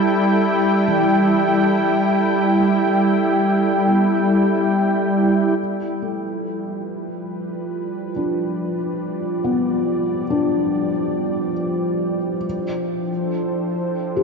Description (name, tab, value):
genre	ambient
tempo	70 BPM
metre	4/4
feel	straight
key	unclear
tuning	A4 = 440 Hz
part	warm analog pad	sustained chords	0.0-14.2 s	F3 to G5	-18 LUFS	equal	chorus
part	felt-muted upright piano	arpeggios	0.0-14.2 s	E3 to G4	-27 LUFS	left 4 dB	diffuse ambient delay
part	overtone-sweeping drone	drone	6.3-14.2 s	F3	-24 LUFS	right 1 dB	chorus, built-in reverb
room	wet cathedral reverb, RT60 6.0 s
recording	in a vast, echoing space, cassette tape, nothing above 7.8 kHz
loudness	-17 LUFS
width	side -5 dB against mid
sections	0.0-5.6 A section; 5.6-14.2 B section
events	fade-in on analog synth pad 5.6-14.2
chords	0.0 Fmaj9#11 (rootless); 5.6 Em7/F; 12.4 G7sus4/F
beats	0.45 1.30 | 2.16 3.02 3.87 4.73 | 5.59 6.45 7.30 8.16 | 9.02 9.87 10.73 11.59 | 12.45 13.30 14.16